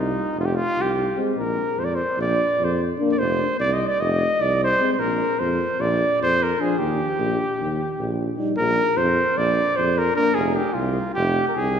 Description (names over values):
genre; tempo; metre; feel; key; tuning
balkan folk, Balkan brass band; 300 BPM (eighths); 9/8; straight; unclear; A4 = 438 Hz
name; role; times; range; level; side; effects
mellow trumpet; melody; 0.0-11.8 s; Eb4 to Eb5; -21 LUFS; equal; none
warm tuba; bass; 0.0-11.8 s; F1 to F2; -24 LUFS; equal; none
dark euphonium; accompaniment; 1.2-10.3 s; C4 to Eb4; -29 LUFS; left 5 dB; none
warm euphonium; accompaniment; 1.2-10.3 s; F3 to Bb3; -32 LUFS; right 2 dB; none
room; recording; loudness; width
wet concert hall reverb, RT60 2.2 s; recorded in a church or concert hall; -19 LUFS; side -8 dB against mid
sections
0.0-8.6 A section; 8.6-11.8 A section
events
none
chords
0.0 F5; 1.4 Bb; 3.2 F5; 5.0 Bb; 6.8 Bb5; 10.3 Fm